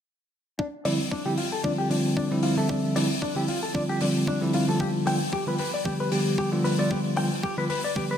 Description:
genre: nu-disco, nu disco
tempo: 114 BPM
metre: 4/4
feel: swing 55% on 16ths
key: D dorian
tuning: A4 = 439 Hz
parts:
  - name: direct-recorded clean electric guitar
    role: riff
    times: 0.6-8.2 s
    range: D4 to G5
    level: -30 LUFS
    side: left 2 dB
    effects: lush chorus, low-pass filter, diffuse ambient delay
  - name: electronic kick drum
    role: drums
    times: 0.6-8.1 s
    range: none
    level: -30 LUFS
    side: right 1 dB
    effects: high-pass filter on kick, small room ambience
  - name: bell-like tine electric piano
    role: accompaniment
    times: 0.8-8.2 s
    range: D3 to E5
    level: -25 LUFS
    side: equal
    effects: sidechain pumping, diffuse ambient delay
  - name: hi-hat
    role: drums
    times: 0.9-7.8 s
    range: none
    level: -34 LUFS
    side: left 4 dB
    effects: small room ambience
room: wet lush hall reverb, RT60 1.8 s, studio reverb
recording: dreamy mix soaked in reverb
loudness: -23 LUFS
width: side -9 dB against mid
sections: 0.6-8.2 A section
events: filter sweep on clean electric guitar 0.6-8.2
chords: 0.6 Dm11; 4.8 G7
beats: | 0.59 1.12 1.65 2.17 | 2.70 3.22 3.75 4.28 | 4.80 5.33 5.86 6.38 | 6.91 7.43 7.96

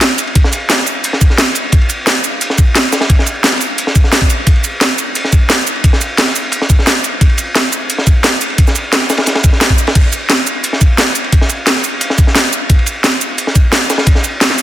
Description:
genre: drum and bass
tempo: 175 BPM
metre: 4/4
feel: straight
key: none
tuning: none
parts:
  - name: crunchy breakbeat drum kit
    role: drums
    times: 0.0-14.6 s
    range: ride cymbal, snare drum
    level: -16 LUFS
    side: equal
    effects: high-pass filter on cymbals, high-pass filter on snare, high-pass filter on room
  - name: drum and bass drum kit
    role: drums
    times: 0.0-14.6 s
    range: cabasa, crash cymbal, hi-hat, snare drum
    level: -14 LUFS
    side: right 1 dB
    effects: none
  - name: electronic kick drum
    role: drums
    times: 0.4-14.1 s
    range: none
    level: -9 LUFS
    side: equal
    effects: none
room: light reverb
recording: dense, heavily limited modern master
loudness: -10 LUFS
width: side -13 dB against mid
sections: 0.0-14.6 A section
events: none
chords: none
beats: 0.01 | 0.35 0.70 1.04 1.38 | 1.73 2.07 2.41 2.75 | 3.10 3.44 3.78 4.13 | 4.47 4.81 5.16 5.50 | 5.84 6.18 6.53 6.87 | 7.21 7.55 7.90 8.24 | 8.58 8.93 9.27 9.61 | 9.96 10.30 10.64 10.98 | 11.33 11.67 12.01 12.36 | 12.70 13.04 13.38 13.73 | 14.07 14.41

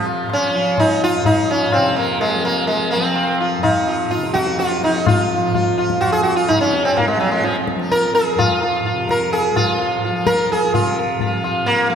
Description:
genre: indian classical, Hindustani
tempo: 126 BPM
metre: 3/4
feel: straight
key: F raga bhairavi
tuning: A4 = 444 Hz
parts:
  - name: sitar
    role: melody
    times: 0.0-11.9 s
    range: F3 to Bb4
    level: -17 LUFS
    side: right 1 dB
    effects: none
  - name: tanpura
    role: drone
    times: 0.0-11.9 s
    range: F2 to F3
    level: -24 LUFS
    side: left 1 dB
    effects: none
  - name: tabla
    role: percussion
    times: 0.1-11.9 s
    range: none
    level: -22 LUFS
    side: left 3 dB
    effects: none
room: wet church reverb, RT60 2.8 s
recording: recorded in a church or concert hall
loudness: -15 LUFS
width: side -7 dB against mid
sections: 0.0-10.7 A section; 10.7-11.9 B section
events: none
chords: none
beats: 0.30 | 0.78 1.25 1.73 | 2.21 2.69 3.17 | 3.64 4.12 4.59 | 5.07 5.54 6.02 | 6.49 6.97 7.44 | 7.92 8.39 8.86 | 9.33 9.80 10.27 | 10.74 11.21 11.68

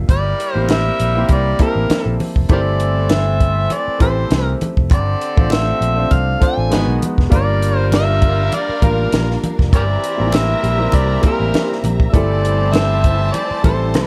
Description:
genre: lush 1970s-style soul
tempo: 100 BPM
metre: 4/4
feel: swing 54% on 16ths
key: unclear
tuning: A4 = 440 Hz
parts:
  - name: warm baby grand piano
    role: accompaniment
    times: 0.0-14.1 s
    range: G3 to A5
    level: -24 LUFS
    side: equal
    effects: none
  - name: fingered electric bass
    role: bass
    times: 0.0-14.1 s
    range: F1 to C2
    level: -21 LUFS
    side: equal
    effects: none
  - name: overdriven harmonica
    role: melody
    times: 0.1-14.1 s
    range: G4 to Ab5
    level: -23 LUFS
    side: equal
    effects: none
  - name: warm horn section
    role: stabs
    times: 0.1-14.1 s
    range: D3 to Bb4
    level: -29 LUFS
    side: equal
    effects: none
  - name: compact cocktail drum kit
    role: drums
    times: 0.1-14.1 s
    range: hi-hat, kick drum, snare drum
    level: -18 LUFS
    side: equal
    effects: none
  - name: congas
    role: percussion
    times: 0.7-14.1 s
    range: none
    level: -28 LUFS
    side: equal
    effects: none
  - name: warm studio string section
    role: second line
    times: 7.3-14.1 s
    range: D4 to Bb5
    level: -30 LUFS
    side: equal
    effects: analog delay
room: light reverb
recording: cassette tape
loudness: -16 LUFS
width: mono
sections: 0.0-14.1 A section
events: none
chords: 0.1 C7/G; 2.5 Am7/G; 4.9 Dm7/G; 6.7 Abm7; 7.3 Gm7; 9.7 C7/G; 12.1 Am7/G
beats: | 0.09 0.69 1.29 1.90 | 2.50 3.10 3.70 4.30 | 4.91 5.51 6.11 6.71 | 7.32 7.92 8.52 9.12 | 9.72 10.33 10.93 11.53 | 12.13 12.73 13.34 13.94

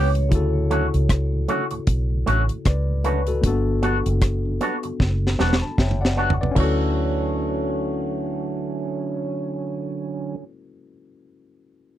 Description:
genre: lovers rock reggae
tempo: 77 BPM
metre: 4/4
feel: swing 57% on 16ths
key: D major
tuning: A4 = 440 Hz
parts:
  - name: mellow tonewheel organ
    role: accompaniment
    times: 0.0-10.4 s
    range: D2 to C#4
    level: -30 LUFS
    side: right 5 dB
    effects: overdrive, chorus vibrato, slow rotary speaker, slapback echo
  - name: tine electric piano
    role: accompaniment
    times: 0.0-12.0 s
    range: C#3 to B5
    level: -28 LUFS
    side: left 5 dB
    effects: none
  - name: electric guitar with an envelope filter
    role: stabs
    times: 0.0-10.4 s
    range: A3 to F#4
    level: -26 LUFS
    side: right 1 dB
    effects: none
  - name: vintage muted fingered electric bass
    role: bass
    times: 0.0-10.4 s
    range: E1 to D2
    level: -22 LUFS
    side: equal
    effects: none
  - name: deep reggae drum kit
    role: drums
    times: 0.1-6.8 s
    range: crash cymbal, hi-hat, kick drum, rim click, snare drum, toms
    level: -21 LUFS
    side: equal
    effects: none
room: little or no reverb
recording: dry, close 1970s-style studio recording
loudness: -20 LUFS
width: side -12 dB against mid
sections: 0.3-6.6 A section; 6.6-9.7 B section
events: drum fill 5.0-6.6; tine electric piano fill 5.0-6.6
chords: 0.3 Dmaj7; 3.4 Gmaj7; 6.6 Dmaj7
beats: | 0.32 1.10 1.88 2.66 | 3.44 4.22 5.00 5.78 | 6.56 7.34 8.12 8.90

